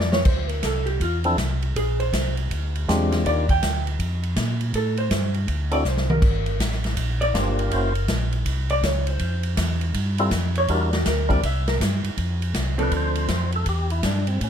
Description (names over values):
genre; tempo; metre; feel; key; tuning
soul jazz organ trio; 161 BPM; 4/4; swing 64% on 8ths; D minor; A4 = 440 Hz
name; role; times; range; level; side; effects
hollow-body jazz guitar; accompaniment; 0.0-13.3 s; F3 to G5; -26 LUFS; right 1 dB; none
mellow tonewheel organ; bass; 0.0-14.5 s; F#1 to Bb2; -24 LUFS; equal; chorus vibrato, slow rotary speaker
swinging big-band drum kit; drums; 0.0-14.5 s; crash cymbal, hi-hat, kick drum, ride cymbal, snare drum, toms; -26 LUFS; equal; none
percussive tonewheel organ; melody; 1.2-3.5, 5.7-7.9, 10.2-14.5 s; F3 to B#4; -25 LUFS; left 1 dB; slow rotary speaker
room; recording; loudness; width
light reverb; none; -20 LUFS; side -8 dB against mid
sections
0.3-12.2 A section; 12.2-14.5 A section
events
drum fill 0.0, 5.9-6.2; hollow-body jazz guitar solo 0.0-12.2; tonewheel organ solo 12.2-14.5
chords
0.3 D7sus2; 1.8 Bb13; 3.2 Ebmaj9; 4.7 Gsus24; 5.5 D7(no3); 6.2 Gm9; 7.7 F#(#11); 9.2 Fmaj7sus2; 10.7 Em7b5; 11.4 C5; 12.2 F6; 13.7 Em7